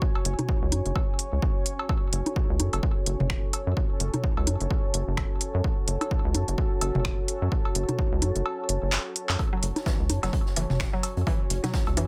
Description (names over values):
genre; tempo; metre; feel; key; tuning
minimal techno; 128 BPM; 4/4; swing 58% on 16ths; F# minor; A4 = 440 Hz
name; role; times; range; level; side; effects
electronic kick drum; drums; 0.0-11.8 s; none; -29 LUFS; equal; none
bubbling stepped-filter texture; texture; 0.0-12.1 s; C#4 to C#5; -43 LUFS; equal; chorus, built-in reverb, sidechain pumping
deep dark ambient pad; texture; 0.0-12.1 s; F#4 to A5; -37 LUFS; equal; chorus, built-in reverb, sidechain pumping
electronic cowbell, toms and bongos; percussion; 0.2-12.1 s; none; -34 LUFS; equal; delay
rubbery square bass; bass; 0.3-12.1 s; F#1 to F#2; -29 LUFS; equal; tube saturation, sidechain pumping
minimal click drum kit; drums; 0.3-12.1 s; finger snaps, handclaps, hi-hat; -32 LUFS; equal; none
swinging big-band drum kit; drums; 9.4-12.1 s; hi-hat, snare drum; -45 LUFS; equal; high-pass filter on hats, high-pass filter on snare, high-pass filter on room
mallet-like synth pluck; riff; 9.5-12.0 s; E3 to F#3; -36 LUFS; equal; chorus, sidechain pumping, dub echo
room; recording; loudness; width
light reverb; none; -27 LUFS; mono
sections
0.0-12.1 A section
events
kick drops out 8.5-9.4; drum fill 8.9-9.4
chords
0.0 F#5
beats
| 0.02 0.49 0.96 1.42 | 1.89 2.36 2.83 3.30 | 3.77 4.24 4.71 5.17 | 5.64 6.11 6.58 7.05 | 7.52 7.99 8.46 8.92 | 9.39 9.86 10.33 10.80 | 11.27 11.74